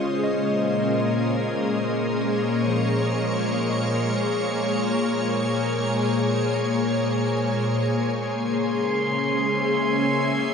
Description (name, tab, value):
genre	ambient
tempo	59 BPM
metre	4/4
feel	straight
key	unclear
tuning	A4 = 440 Hz
part	soft additive organ-like pad	sustained chords	0.0-10.5 s	Bb2 to Ab5	-22 LUFS	left 1 dB	ensemble chorus, built-in reverb, shimmer reverb
part	barky tine electric piano	arpeggios	0.0-8.1 s	F3 to Eb5	-34 LUFS	right 1 dB	none
part	organ-like drone	drone	0.0-10.5 s	Ab3	-30 LUFS	equal	ensemble chorus, built-in reverb
part	drifting glass-harmonics texture	texture	8.4-10.5 s	C6	-26 LUFS	right 2 dB	chorus, built-in reverb, shimmer reverb
room	wet huge ambient reverb, RT60 7.4 s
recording	none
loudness	-21 LUFS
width	side -6 dB against mid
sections	0.0-8.1 A section; 8.1-10.5 B section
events	none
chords	0.0 Bbm7; 8.1 Dbm